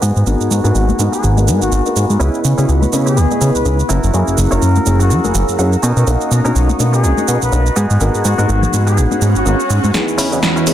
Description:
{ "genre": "filtered disco house", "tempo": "124 BPM", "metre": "4/4", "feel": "swing 57% on 16ths", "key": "C# dorian", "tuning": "A4 = 435 Hz", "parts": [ { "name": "clear trumpet section", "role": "melody", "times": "0.0-9.9 s", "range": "F#4 to B4", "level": "-23 LUFS", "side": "left 3 dB", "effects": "low-pass filter, ping-pong delay" }, { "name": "string machine, full ensemble", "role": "sustained chords", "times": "0.0-10.7 s", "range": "E3 to E6", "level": "-23 LUFS", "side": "right 1 dB", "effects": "ensemble chorus, vintage 12-bit sampler grit, low-pass filter" }, { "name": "direct-recorded clean electric guitar", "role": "riff", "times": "0.0-10.7 s", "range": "B3 to F#5", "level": "-24 LUFS", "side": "right 1 dB", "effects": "vintage 12-bit sampler grit, low-pass filter" }, { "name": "fat analog bass", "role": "bass", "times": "0.0-10.7 s", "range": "F#1 to C#3", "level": "-14 LUFS", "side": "equal", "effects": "high-pass filter, low-pass filter" }, { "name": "punchy analog drum machine", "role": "drums", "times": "0.0-10.7 s", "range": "hi-hat, shaker, snare drum", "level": "-22 LUFS", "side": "right 5 dB", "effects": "none" }, { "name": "tambourine and congas", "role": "percussion", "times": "0.0-9.9 s", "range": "none", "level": "-25 LUFS", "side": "left 4 dB", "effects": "none" }, { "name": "clear grand piano", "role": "accompaniment", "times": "0.3-10.7 s", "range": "A#3 to D#5", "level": "-19 LUFS", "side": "left 1 dB", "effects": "phaser, low-pass filter" }, { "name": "swell and riser", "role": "sound effects", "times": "9.2-10.7 s", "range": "none", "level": "-24 LUFS", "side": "right 4 dB", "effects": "none" } ], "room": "little or no reverb", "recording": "dense, heavily limited modern master", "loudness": "-12 LUFS", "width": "side -11 dB against mid", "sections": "0.0-9.9 A section", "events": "filter sweep 0.0-9.9; clean electric guitar fill 5.3-6.1; swell 9.2-9.9; drum fill 9.9-10.7", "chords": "0.0 G#m7; 2.2 C#m7; 3.9 F#7; 5.8 Bmaj9; 7.8 G#m7; 9.9 C#m7", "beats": "| 0.27 0.75 1.23 1.72 | 2.20 2.69 3.17 3.65 | 4.14 4.62 5.10 5.59 | 6.07 6.56 7.04 7.52 | 8.01 8.49 8.97 9.46 | 9.94 10.43" }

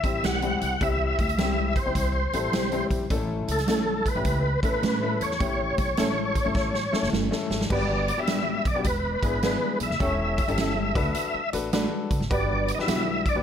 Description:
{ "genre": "uptempo 1960s-style soul", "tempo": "104 BPM", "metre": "4/4", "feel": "swing 65% on 8ths", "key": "unclear", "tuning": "A4 = 441 Hz", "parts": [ { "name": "overdriven tonewheel organ", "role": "melody", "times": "0.0-13.4 s", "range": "A4 to F#5", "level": "-27 LUFS", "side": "equal", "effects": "chorus vibrato, fast rotary speaker, tape echo" }, { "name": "clear baby grand piano", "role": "accompaniment", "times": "0.0-13.4 s", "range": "G3 to B4", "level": "-31 LUFS", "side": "left 5 dB", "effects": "none" }, { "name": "upright bass", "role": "bass", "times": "0.0-13.4 s", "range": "E1 to A2", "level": "-30 LUFS", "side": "equal", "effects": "none" }, { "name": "swinging big-band drum kit", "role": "drums", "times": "0.0-13.3 s", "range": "crash cymbal, hi-hat, kick drum, snare drum", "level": "-28 LUFS", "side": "equal", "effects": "none" }, { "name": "mellow electric guitar", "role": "stabs", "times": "0.2-13.0 s", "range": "G3 to B4", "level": "-30 LUFS", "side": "right 4 dB", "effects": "none" }, { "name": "mellow horn section", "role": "second line", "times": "7.7-12.8 s", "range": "B3 to C#5", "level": "-32 LUFS", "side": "right 3 dB", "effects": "none" }, { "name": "vibraphone with soft mallets", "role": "second line", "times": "12.3-13.4 s", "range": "D4 to E4", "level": "-36 LUFS", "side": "right 2 dB", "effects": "none" } ], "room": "light reverb", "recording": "none", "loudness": "-23 LUFS", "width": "side -8 dB against mid", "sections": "0.0-7.7 A section; 7.7-13.4 B section", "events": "drum fill 6.6-7.7", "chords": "0.0 C; 3.1 A; 7.7 Gmaj7; 8.9 E7; 10.0 A7/E; 10.9 D6; 12.3 Gmaj7", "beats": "0.23 | 0.81 1.38 1.96 2.53 | 3.10 3.68 4.25 4.83 | 5.40 5.98 6.55 7.13 | 7.70 8.28 8.85 9.43 | 10.00 10.58 11.15 11.73 | 12.30 12.88" }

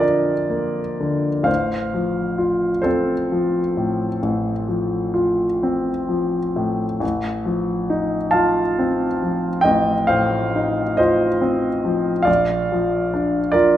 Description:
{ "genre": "classical, romantic nocturne for solo piano", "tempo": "41-48 BPM (dotted quarters)", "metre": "12/8", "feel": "rubato", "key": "unclear", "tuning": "A4 = 442 Hz", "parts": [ { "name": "clear grand piano", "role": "solo", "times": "0.0-13.8 s", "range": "A1 to A5", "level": "-18 LUFS", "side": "equal", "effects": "none" } ], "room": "moderate large studio reverb, RT60 1.3 s", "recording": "nothing above 10.5 kHz", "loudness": "-18 LUFS", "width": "side -12 dB against mid", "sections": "0.0-13.8 A section", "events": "none", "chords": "0.0 Bb; 1.5 F/A; 7.0 F7/A; 12.3 Bb", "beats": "0.05 | 1.49 2.87 4.25 5.65 | 7.03 8.35 9.66 10.99 | 12.28 13.56" }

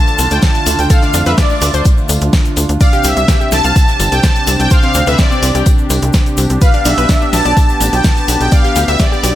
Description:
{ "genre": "progressive house", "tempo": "126 BPM", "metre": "4/4", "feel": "straight", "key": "unclear", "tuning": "A4 = 439 Hz", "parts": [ { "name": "soft supersaw", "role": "melody", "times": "0.0-9.4 s", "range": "D5 to A5", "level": "-16 LUFS", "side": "equal", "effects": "phaser, tape echo" }, { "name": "warm analog pad", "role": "sustained chords", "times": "0.0-9.4 s", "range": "C3 to G4", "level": "-20 LUFS", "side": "equal", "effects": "chorus, sidechain pumping" }, { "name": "analog pluck", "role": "arpeggios", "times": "0.0-9.3 s", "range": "C4 to F5", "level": "-21 LUFS", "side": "equal", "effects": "chorus, sidechain pumping, tape echo" }, { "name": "oversized low-tuned drum kit", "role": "drums", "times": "0.1-9.4 s", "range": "hi-hat, snare drum, tambourine", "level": "-28 LUFS", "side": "left 4 dB", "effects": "none" }, { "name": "egg shaker", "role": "percussion", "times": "0.1-9.3 s", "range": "none", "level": "-25 LUFS", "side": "left 6 dB", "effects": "none" }, { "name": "tight sequencer bass", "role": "bass", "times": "0.2-9.3 s", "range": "G1 to F2", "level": "-15 LUFS", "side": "equal", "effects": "sidechain pumping" }, { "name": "deep house drum kit", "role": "drums", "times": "0.2-9.3 s", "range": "hi-hat, snare drum", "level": "-19 LUFS", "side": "equal", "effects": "none" }, { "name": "electronic kick drum", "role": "drums", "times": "0.4-9.1 s", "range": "none", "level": "-11 LUFS", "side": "equal", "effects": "none" } ], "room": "small room reverb", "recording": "none", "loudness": "-9 LUFS", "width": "side -13 dB against mid", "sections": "0.0-9.4 A section", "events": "none", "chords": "0.0 Dm; 2.8 Csus2; 6.6 G", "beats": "0.42 | 0.90 1.38 1.85 2.33 | 2.81 3.28 3.76 4.24 | 4.71 5.19 5.66 6.14 | 6.62 7.09 7.57 8.04 | 8.52 9.00" }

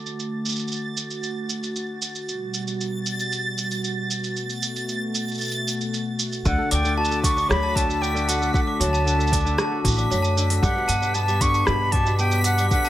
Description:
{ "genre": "folktronica", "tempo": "115 BPM", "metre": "4/4", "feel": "straight", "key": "D major", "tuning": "A4 = 440 Hz", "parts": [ { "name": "warm analog pad", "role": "sustained chords", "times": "0.0-12.9 s", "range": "B2 to G4", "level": "-30 LUFS", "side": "equal", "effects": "chorus, vintage 12-bit sampler grit" }, { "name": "backwards swelling texture", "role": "texture", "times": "0.1-12.9 s", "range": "A6 to B6", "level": "-32 LUFS", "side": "equal", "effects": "built-in reverb" }, { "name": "organic electronic drum kit", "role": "drums", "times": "0.1-12.9 s", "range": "hi-hat, rim click, shaker", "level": "-28 LUFS", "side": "right 2 dB", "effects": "low-pass filter on hats, low-pass filter on perc, low-pass filter on snare, low-pass filter on room" }, { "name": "silver concert flute", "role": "melody", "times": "6.5-12.9 s", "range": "F#5 to C#6", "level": "-25 LUFS", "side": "equal", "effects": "tape echo" }, { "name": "kora", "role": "arpeggios", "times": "6.5-12.9 s", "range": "B2 to A4", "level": "-28 LUFS", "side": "left 2 dB", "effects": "tape echo" }, { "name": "upright bass", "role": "bass", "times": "6.5-12.7 s", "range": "A1 to G2", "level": "-24 LUFS", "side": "equal", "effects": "tube saturation" }, { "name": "electronic kick drum", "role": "drums", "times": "6.5-12.8 s", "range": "none", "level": "-24 LUFS", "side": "equal", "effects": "none" }, { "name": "glockenspiel with hard plastic mallets", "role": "second line", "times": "6.7-12.9 s", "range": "A5 to D6", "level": "-30 LUFS", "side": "equal", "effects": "tape echo" } ], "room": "light reverb", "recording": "none", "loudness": "-21 LUFS", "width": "side -13 dB against mid", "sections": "0.0-6.5 A section; 6.5-12.9 B section", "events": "none", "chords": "0.0 D; 2.3 Gmaj7; 6.5 D; 10.6 Gmaj7", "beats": "| 0.20 0.72 1.24 1.76 | 2.28 2.80 3.33 3.85 | 4.37 4.89 5.41 5.93 | 6.46 6.98 7.50 8.02 | 8.54 9.06 9.59 10.11 | 10.63 11.15 11.67 12.20 | 12.72" }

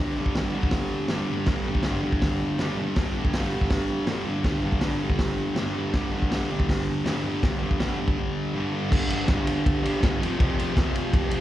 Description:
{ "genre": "garage rock duo or trio", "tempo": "161 BPM", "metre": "4/4", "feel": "straight", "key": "unclear", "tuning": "A4 = 440 Hz", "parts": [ { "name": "thick fuzz guitar", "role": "riff", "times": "0.0-11.4 s", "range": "F2 to G3", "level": "-26 LUFS", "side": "equal", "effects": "distortion" }, { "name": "vintage drum kit", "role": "drums", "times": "0.3-11.4 s", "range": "crash cymbal, hi-hat, kick drum, ride cymbal, snare drum", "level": "-25 LUFS", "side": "equal", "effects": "none" } ], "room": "studio reverb", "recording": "live gig heard through the venue's PA, club reverb", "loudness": "-23 LUFS", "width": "side -13 dB against mid", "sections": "0.0-8.9 A section; 8.9-11.4 B section", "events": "break 8.2-8.9", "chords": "0.0 G5; 10.2 F5", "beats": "0.35 0.72 1.10 | 1.47 1.84 2.21 2.59 | 2.96 3.33 3.70 4.08 | 4.45 4.82 5.20 5.57 | 5.94 6.32 6.69 7.06 | 7.43 7.80 8.18 8.55 | 8.92 9.29 9.66 10.03 | 10.40 10.77 11.14" }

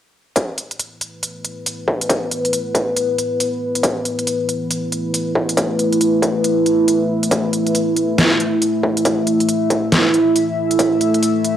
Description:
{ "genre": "deep dubstep", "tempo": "138 BPM", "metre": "4/4", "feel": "swing 62% on 16ths, half-time", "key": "unclear", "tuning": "A4 = 440 Hz", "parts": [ { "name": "deep dark ambient pad", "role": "sustained chords", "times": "1.6-11.6 s", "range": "A3 to E5", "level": "-17 LUFS", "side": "equal", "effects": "chorus, built-in reverb" }, { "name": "dubstep drum kit", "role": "drums", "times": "0.4-11.6 s", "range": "hi-hat, snare drum", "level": "-19 LUFS", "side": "equal", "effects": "studio reverb, cassette tape" }, { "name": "electronic kick drum", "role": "drums", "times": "0.4-10.9 s", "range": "none", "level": "-19 LUFS", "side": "equal", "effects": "distortion, high-pass filter on kick, studio reverb, cassette tape" } ], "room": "light reverb", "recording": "home recording on cassette", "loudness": "-16 LUFS", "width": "side -10 dB against mid", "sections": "0.4-11.6 A section", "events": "none", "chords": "0.4 A5", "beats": "| 0.36 0.79 1.23 1.66 | 2.10 2.53 2.97 3.40 | 3.83 4.27 4.71 5.14 | 5.57 6.01 6.44 6.88 | 7.31 7.75 8.18 8.62 | 9.05 9.49 9.92 10.36 | 10.79 11.23" }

